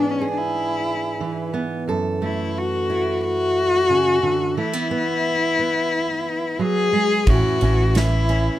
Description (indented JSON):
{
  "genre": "acoustic folk-pop ballad",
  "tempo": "89 BPM",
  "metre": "4/4",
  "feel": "straight",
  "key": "unclear",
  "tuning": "A4 = 440 Hz",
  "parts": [
    { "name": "dark cello", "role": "melody", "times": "0.0-8.6 s", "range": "C#4 to G#4", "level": "-20 LUFS", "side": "left 2 dB", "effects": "none" },
    { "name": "fingerpicked steel-string acoustic guitar", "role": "accompaniment", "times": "0.0-8.6 s", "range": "F#2 to A4", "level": "-24 LUFS", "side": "right 3 dB", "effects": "none" },
    { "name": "mellow fretless electric bass", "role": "bass", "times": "7.3-8.5 s", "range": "A1", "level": "-18 LUFS", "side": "equal", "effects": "none" },
    { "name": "loose indie drum kit", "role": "drums", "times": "7.3-8.4 s", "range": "kick drum, ride cymbal, snare drum", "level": "-23 LUFS", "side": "right 1 dB", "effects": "none" }
  ],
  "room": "little or no reverb",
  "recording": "none",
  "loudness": "-18 LUFS",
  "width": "side -13 dB against mid",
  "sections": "0.0-8.6 A section",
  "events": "none",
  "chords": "0.0 E7/G#; 1.9 F#m7; 4.6 E; 7.3 A"
}